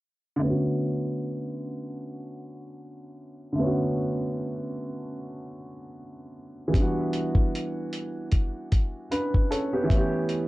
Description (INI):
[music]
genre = lo-fi hip hop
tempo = 76 BPM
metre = 4/4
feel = swing 57% on 16ths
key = B minor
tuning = A4 = 439 Hz
[part]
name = warm upright piano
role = accompaniment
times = 0.4-10.5 s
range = D3 to B4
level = -28 LUFS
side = equal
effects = cassette tape, low-pass filter
[part]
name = dusty soul sampler-style drum kit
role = drums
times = 6.7-10.5 s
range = hi-hat, kick drum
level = -23 LUFS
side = equal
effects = none
[sound]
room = moderate studio reverb, RT60 0.7 s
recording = dark, warm production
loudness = -25 LUFS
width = side -18 dB against mid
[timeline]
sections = 0.4-10.5 A section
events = filter sweep on upright piano 0.4-10.5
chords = 0.4 Bm7; 6.7 Em7; 9.9 A7